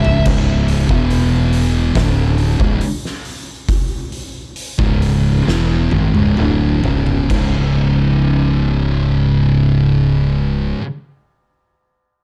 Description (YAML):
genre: stoner and doom metal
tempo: 64-71 BPM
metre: 4/4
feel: straight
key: unclear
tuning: A4 = 440 Hz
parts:
  - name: thick fuzz guitar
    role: riff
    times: 0.0-10.8 s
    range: C#2 to E3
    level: -20 LUFS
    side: equal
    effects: distortion
  - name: thick fuzz guitar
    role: riff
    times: 0.0-10.8 s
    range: C#2 to E3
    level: -21 LUFS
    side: equal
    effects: distortion
  - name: growling fingered electric bass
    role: bass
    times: 0.0-10.7 s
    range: C#1 to G#1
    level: -20 LUFS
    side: equal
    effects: overdrive
  - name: oversized low-tuned drum kit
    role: drums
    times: 0.0-7.5 s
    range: crash cymbal, hi-hat, kick drum, snare drum, toms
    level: -23 LUFS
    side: equal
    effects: none
room: small room ambience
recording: dark, warm production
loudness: -16 LUFS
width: mono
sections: 0.3-7.3 A section; 7.3-11.1 B section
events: drum fill 0.0, 5.5-7.3; slowing down 0.3-7.3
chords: 0.3 C#5; 0.9 E5; 2.0 C#m; 7.3 C#5